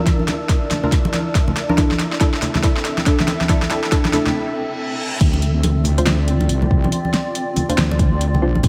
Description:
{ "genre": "deep dubstep", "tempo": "140 BPM", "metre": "4/4", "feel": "swing 61% on 16ths, half-time", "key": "D minor", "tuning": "A4 = 439 Hz", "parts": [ { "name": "granular cloud pad", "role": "sustained chords", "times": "0.0-8.7 s", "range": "G3 to E5", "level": "-28 LUFS", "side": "equal", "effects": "built-in reverb" }, { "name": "filtered dub chord stab", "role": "stabs", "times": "0.0-8.5 s", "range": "D4 to C5", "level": "-26 LUFS", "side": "equal", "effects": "subtle chorus, dub echo" }, { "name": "wind-like tuned noise texture", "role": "texture", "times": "0.0-4.4 s", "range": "E4 to E6", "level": "-35 LUFS", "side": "equal", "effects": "built-in reverb" }, { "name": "deep house drum kit", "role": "drums", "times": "0.1-8.7 s", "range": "crash cymbal, handclaps, hi-hat, snare drum", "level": "-26 LUFS", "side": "equal", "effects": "high-pass filter on snare, studio reverb, high-pass filter on hats, high-pass filter on cymbals" }, { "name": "electronic kick drum", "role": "drums", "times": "0.1-8.7 s", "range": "none", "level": "-19 LUFS", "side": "equal", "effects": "studio reverb" }, { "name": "congas", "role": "percussion", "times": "0.2-8.7 s", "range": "none", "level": "-25 LUFS", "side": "equal", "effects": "none" }, { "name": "reverse cymbal", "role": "sound effects", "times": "4.6-5.2 s", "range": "none", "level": "-31 LUFS", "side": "equal", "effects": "none" }, { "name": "wobble bass", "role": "bass", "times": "5.2-8.7 s", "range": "G1 to D2", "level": "-20 LUFS", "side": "equal", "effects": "chorus, tube saturation" } ], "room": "moderate lush hall reverb, RT60 1.8 s", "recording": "vinyl crackle", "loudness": "-18 LUFS", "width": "mono", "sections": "0.0-5.2 A section; 5.2-8.7 B section", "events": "build-up 0.0-5.2; drum fill 0.0-4.4; filter sweep on ambient pad 0.0-5.2; break 4.4-5.2; reverse cymbal 4.6-5.2; drop 5.2-8.7", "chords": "0.0 Bb; 1.8 Am; 5.2 Dm7" }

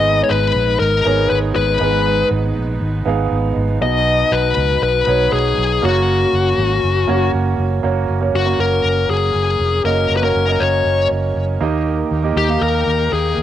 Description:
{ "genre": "piano-driven pop", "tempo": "119 BPM", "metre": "4/4", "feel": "straight", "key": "F# major", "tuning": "A4 = 440 Hz", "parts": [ { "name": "bluesy overdriven lead guitar", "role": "melody", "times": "0.0-13.4 s", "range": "F#4 to D#5", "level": "-17 LUFS", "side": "left 5 dB", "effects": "distortion, cassette tape" }, { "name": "warm concert grand piano", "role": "accompaniment", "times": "0.0-13.4 s", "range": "G#2 to E#5", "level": "-20 LUFS", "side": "right 7 dB", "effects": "cassette tape" }, { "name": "clear studio string section", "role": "sustained chords", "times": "0.0-13.4 s", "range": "D#3 to G5", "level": "-32 LUFS", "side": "equal", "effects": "none" }, { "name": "fingered electric bass", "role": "bass", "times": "0.0-13.4 s", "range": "E#1 to D#2", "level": "-19 LUFS", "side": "equal", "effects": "none" } ], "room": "light reverb", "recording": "home recording on cassette", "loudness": "-14 LUFS", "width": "side -11 dB against mid", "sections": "0.0-7.8 A section; 7.8-13.4 B section", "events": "none", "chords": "0.0 G#m; 3.8 B; 5.8 F#; 11.6 D#" }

